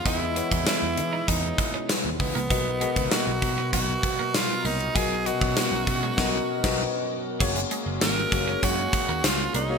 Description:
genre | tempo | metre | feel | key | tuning
1980s-style pop | 98 BPM | 4/4 | straight | F# major | A4 = 445 Hz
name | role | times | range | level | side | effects
raspy tenor saxophone | melody | 0.0-9.8 s | B3 to A#4 | -29 LUFS | right 3 dB | digital delay
mellow tine electric piano | accompaniment | 0.0-9.8 s | B2 to D#5 | -30 LUFS | left 5 dB | lush chorus
chorused pulse-width pad | sustained chords | 0.0-9.8 s | B2 to A#4 | -36 LUFS | equal | none
twelve-string electric guitar | riff | 0.1-9.7 s | F#3 to D#4 | -36 LUFS | right 6 dB | lush chorus
picked electric bass | bass | 0.1-9.8 s | F#1 to E3 | -31 LUFS | equal | none
gated 80s drum kit | drums | 0.1-9.7 s | crash cymbal, hi-hat, kick drum, snare drum, tambourine | -26 LUFS | equal | none
room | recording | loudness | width
moderate lush hall reverb, RT60 1.7 s, small room reverb | bright 1980s-style digital production | -22 LUFS | side -6 dB against mid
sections
0.0-7.4 A section; 7.4-9.8 B section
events
band accent 6.2-7.4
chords
0.1 Emaj7; 2.5 Bmaj7; 7.4 F#add9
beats
| 0.06 0.67 1.28 1.89 | 2.50 3.12 3.73 4.34 | 4.95 5.57 6.18 6.79 | 7.40 8.02 8.63 9.24

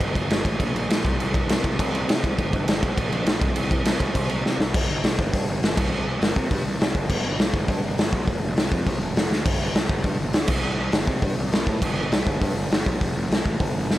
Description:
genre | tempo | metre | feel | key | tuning
punk rock | 203 BPM | 4/4 | straight | unclear | A4 = 439 Hz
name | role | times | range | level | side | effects
fuzz picked electric bass | bass | 0.0-14.0 s | F1 to C3 | -27 LUFS | equal | overdrive
raw garage drum kit | drums | 0.0-14.0 s | crash cymbal, hi-hat, kick drum, snare drum | -22 LUFS | equal | none
room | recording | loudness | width
little or no reverb | none | -20 LUFS | side -15 dB against mid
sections
0.0-4.7 A section; 4.7-14.0 B section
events
drum fill 4.4, 9.3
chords
none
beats
| 0.00 0.30 0.60 0.89 | 1.19 1.49 1.78 2.08 | 2.38 2.67 2.97 3.26 | 3.56 3.85 4.15 4.44 | 4.74 5.03 5.33 5.62 | 5.91 6.21 6.50 6.80 | 7.09 7.38 7.68 7.97 | 8.27 8.56 8.86 9.15 | 9.45 9.74 10.04 10.33 | 10.63 10.93 11.22 11.52 | 11.81 12.11 12.40 12.70 | 13.00 13.29 13.59 13.89

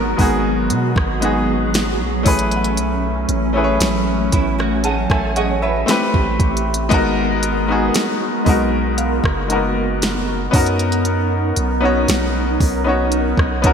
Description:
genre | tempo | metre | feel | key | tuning
contemporary R&B | 58 BPM | 4/4 | straight | unclear | A4 = 440 Hz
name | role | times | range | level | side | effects
clear grand piano | accompaniment | 0.0-13.7 s | G#3 to A5 | -19 LUFS | left 2 dB | none
hollow soft pad | sustained chords | 0.0-13.7 s | F#3 to A#4 | -22 LUFS | right 1 dB | ensemble chorus
long sustained 808-style bass | bass | 0.0-13.7 s | F#1 to B2 | -22 LUFS | right 1 dB | none
smooth R&B drum kit | drums | 0.2-13.7 s | hi-hat, kick drum, rim click, snare drum | -20 LUFS | equal | gated reverb
glassy wavetable pluck | texture | 2.3-10.7 s | D#5 to F#5 | -34 LUFS | right 3 dB | none
nylon-string guitar | arpeggios | 4.3-6.1 s | B3 to C#5 | -24 LUFS | right 6 dB | ensemble chorus, digital delay
room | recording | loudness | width
moderate lush hall reverb, RT60 2.6 s | bright 1980s-style digital production | -15 LUFS | side -7 dB against mid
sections
0.0-13.7 A section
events
none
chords
0.0 G#m9; 2.3 Amaj9; 5.9 Am9; 6.9 G#m9; 10.5 Bmaj9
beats
0.70 1.74 | 2.77 3.81 4.84 5.88 | 6.91 7.95 8.98 10.02 | 11.05 12.09 13.12

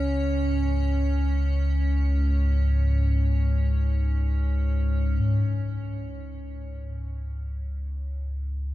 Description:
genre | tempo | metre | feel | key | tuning
dark ambient drone | free time | none | none | unclear | A4 = 440 Hz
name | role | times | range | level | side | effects
deep rumbling drone | drone | 0.0-8.7 s | C#2 to G#2 | -23 LUFS | equal | built-in reverb, lush chorus
icy glass pad | texture | 0.0-5.3 s | C#4 to C#5 | -32 LUFS | right 2 dB | chorus, built-in reverb
room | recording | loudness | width
moderate cathedral reverb, RT60 6.2 s | cassette tape | -23 LUFS | side -15 dB against mid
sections
0.0-5.2 A section; 5.2-8.7 B section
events
filter sweep on synth drone 5.2-8.7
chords
0.0 C#5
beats
free time

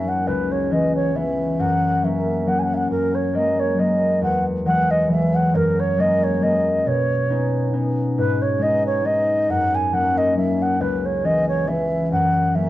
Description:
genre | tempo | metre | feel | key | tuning
celtic folk | 137 BPM | 3/4 | swing 55% on 8ths | unclear | A4 = 440 Hz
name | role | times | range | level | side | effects
mellow hollow baroque flute | melody | 0.0-12.7 s | A#4 to G#5 | -21 LUFS | right 1 dB | plate reverb
concert harp | accompaniment | 0.0-12.7 s | C#2 to D#4 | -20 LUFS | left 1 dB | none
room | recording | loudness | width
moderate studio reverb, RT60 0.7 s | worn, warbling old tape, cassette tape, warbly pitch drift | -18 LUFS | side -15 dB against mid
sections
0.0-8.2 A section; 8.2-12.7 A section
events
none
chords
0.3 C#m7; 1.6 F#; 2.9 F#add9; 4.2 Eadd9; 5.5 F#add9; 6.9 Badd9; 8.2 G#m; 9.5 F#; 10.8 C#m7; 12.1 F#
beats
| 0.27 0.70 1.14 | 1.58 2.02 2.46 | 2.90 3.34 3.78 | 4.22 4.66 5.10 | 5.54 5.97 6.41 | 6.85 7.29 7.73 | 8.17 8.61 9.04 | 9.48 9.92 10.36 | 10.79 11.23 11.67 | 12.11 12.54

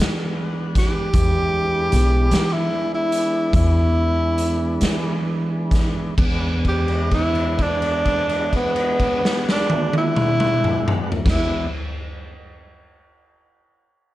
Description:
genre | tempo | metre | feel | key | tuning
slow blues | 42-53 BPM (dotted quarters) | 12/8 | straight | E mixolydian | A4 = 440 Hz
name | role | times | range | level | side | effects
tonewheel organ | sustained chords | 0.0-11.7 s | E3 to F#5 | -28 LUFS | equal | slow rotary speaker
upright bass | bass | 0.0-11.7 s | B1 to E3 | -22 LUFS | equal | none
raw garage drum kit | drums | 0.0-11.5 s | crash cymbal, hi-hat, kick drum, snare drum, toms | -22 LUFS | equal | none
clear tenor saxophone | melody | 0.8-11.7 s | B3 to G4 | -21 LUFS | equal | plate reverb
room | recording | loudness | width
light reverb | dark, warm production | -17 LUFS | side -15 dB against mid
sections
0.0-6.2 A section; 6.2-11.8 B section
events
slowing down 0.0-6.2; held note 6.2-11.3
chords
0.0 E9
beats
| 1.13 2.31 3.53 4.81 | 6.17 7.59 9.00 10.41

